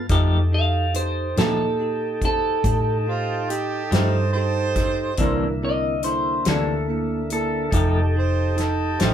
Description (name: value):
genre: slow blues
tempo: 47 BPM (dotted quarters)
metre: 12/8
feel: straight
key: unclear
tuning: A4 = 440 Hz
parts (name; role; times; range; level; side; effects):
- tonewheel organ; sustained chords; 0.0-9.1 s; D3 to A4; -29 LUFS; right 2 dB; slow rotary speaker
- vintage muted fingered electric bass; bass; 0.0-9.1 s; F1 to Bb2; -24 LUFS; equal; none
- bell-like tine electric piano; accompaniment; 0.1-9.1 s; Bb3 to C5; -30 LUFS; right 4 dB; none
- semi-hollow electric guitar; accompaniment; 0.1-9.1 s; C3 to G4; -26 LUFS; left 4 dB; tremolo
- natural country drum kit; drums; 0.1-9.1 s; hi-hat, kick drum, snare drum; -24 LUFS; equal; none
- electric guitar through a small old amp; melody; 0.5-8.1 s; A4 to F5; -24 LUFS; equal; phaser
- warm harmonica; second line; 3.1-9.1 s; F4 to C5; -26 LUFS; right 4 dB; overdrive
room: moderate studio reverb, RT60 0.5 s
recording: band playing live in one room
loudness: -19 LUFS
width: side -9 dB against mid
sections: 0.0-9.1 A section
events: none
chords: 0.1 F9; 5.2 C9; 7.7 F9